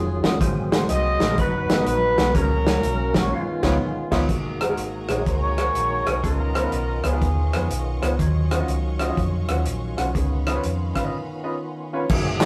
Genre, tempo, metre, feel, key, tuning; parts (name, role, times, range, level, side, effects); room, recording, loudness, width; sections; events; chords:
uptempo gospel; 123 BPM; 4/4; swing 65% on 8ths; F# major; A4 = 438 Hz
mellow horn section; melody; 0.0-8.0 s; G#3 to D#5; -27 LUFS; equal
percussive tonewheel organ; sustained chords; 0.0-12.5 s; D#3 to B4; -33 LUFS; equal; slow rotary speaker, chorus vibrato
hollow-body short-scale fingered electric bass; bass; 0.0-12.5 s; E#1 to G#2; -28 LUFS; equal
clear grand piano; accompaniment; 0.2-12.5 s; G#2 to F#5; -30 LUFS; equal
natural country drum kit; drums; 0.2-12.5 s; crash cymbal, hi-hat, kick drum, ride cymbal, rim click, snare drum; -27 LUFS; equal
bright studio string section; sustained chords; 4.3-12.1 s; C#5 to C#6; -43 LUFS; equal
group handclap; percussion; 12.4-12.5 s; -24 LUFS; equal
moderate stone room reverb, RT60 1.0 s; rough rehearsal-room recording, warm saturation; -22 LUFS; mono
0.0-4.3 A section; 4.3-12.1 B section
band accent 3.3-4.3; break 11.1-12.1
0.4 G#9; 1.4 B/F#; 2.3 F#/C#; 3.3 C#9; 4.3 F#69; 6.2 C#9; 8.2 D#m9; 10.2 C#9